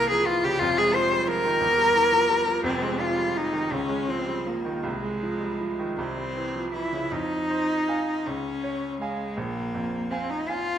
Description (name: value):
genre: classical, romantic duo for cello and grand piano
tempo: 52-60 BPM (dotted quarters)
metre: 6/8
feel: rubato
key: F minor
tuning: A4 = 440 Hz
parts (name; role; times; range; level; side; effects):
- clear cello; melody; 0.0-10.8 s; Ab3 to C5; -24 LUFS; left 1 dB; none
- bright grand piano; accompaniment; 0.0-10.8 s; F1 to Ab5; -29 LUFS; right 3 dB; none
room: wet recital hall reverb, RT60 1.4 s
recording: none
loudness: -23 LUFS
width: side -9 dB against mid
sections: 0.0-7.1 A section; 7.1-10.8 B section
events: none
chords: 0.0 C7; 0.6 Fm; 1.6 Edim; 2.7 Fm; 3.7 Db; 4.8 Fm/C; 6.0 C; 7.1 Fm; 8.3 Db; 9.4 Bb7(no3)